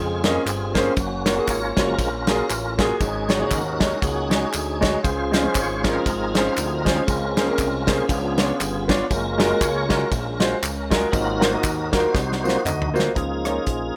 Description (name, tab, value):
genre	uptempo gospel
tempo	118 BPM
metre	4/4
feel	swing 57% on 8ths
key	Db major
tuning	A4 = 442 Hz
part	tonewheel organ	sustained chords	0.0-14.0 s	Db3 to Db5	-28 LUFS	equal	fast rotary speaker, chorus vibrato
part	fat analog bass	bass	0.0-13.9 s	Gb1 to F2	-31 LUFS	equal	none
part	warm baby grand piano	accompaniment	0.2-13.9 s	Ab2 to Eb5	-26 LUFS	equal	none
part	natural country drum kit	drums	0.2-13.8 s	hi-hat, kick drum, ride cymbal, rim click, snare drum, toms	-26 LUFS	equal	none
part	tambourine and handclaps	percussion	0.3-13.1 s	none	-35 LUFS	equal	none
room	light reverb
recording	none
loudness	-22 LUFS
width	mono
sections	0.0-13.2 A section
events	tonewheel organ solo 0.0-13.2; drum fill 12.1-13.2; grand piano fill 12.4-13.2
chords	0.0 Bbm9; 1.0 Gbmaj7; 3.0 Ab7sus4; 5.0 Dbmaj7; 7.1 Bbm9/Db; 8.1 Db7b9; 9.1 Gbmaj9; 11.1 Ab13; 13.2 Db69